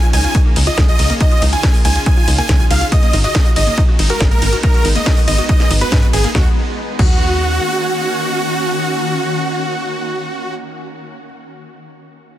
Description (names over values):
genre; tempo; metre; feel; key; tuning
uplifting trance; 140 BPM; 4/4; straight; Eb minor; A4 = 440 Hz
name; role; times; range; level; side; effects
big supersaw lead; melody; 0.0-10.5 s; Gb4 to Ab5; -20 LUFS; right 1 dB; sidechain pumping, tape echo
warm grand piano; second line; 0.0-11.2 s; Gb4 to Ab5; -27 LUFS; equal; none
shimmering ambient pad; sustained chords; 0.1-10.5 s; Db3 to Ab4; -24 LUFS; equal; chorus, built-in reverb, sidechain pumping
wide unison pluck; arpeggios; 0.0-7.1 s; Bb3 to Gb4; -26 LUFS; left 4 dB; cassette tape, sidechain pumping, tape echo
techno drum kit; drums; 0.0-7.1 s; crash cymbal, hi-hat, ride cymbal, snare drum; -22 LUFS; equal; sidechain pumping on hats, sidechain pumping on cymbals
tight sequencer bass; bass; 0.1-7.6 s; Ab1 to Ab2; -17 LUFS; equal; sidechain pumping
electronic kick drum; drums; 0.3-7.1 s; none; -14 LUFS; equal; none
room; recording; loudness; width
digital ambience; dense, heavily limited modern master; -12 LUFS; side -13 dB against mid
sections
0.0-6.3 A section; 6.3-9.8 B section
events
drop 0.0-6.3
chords
0.0 Db; 2.9 Abm; 6.3 Ebm7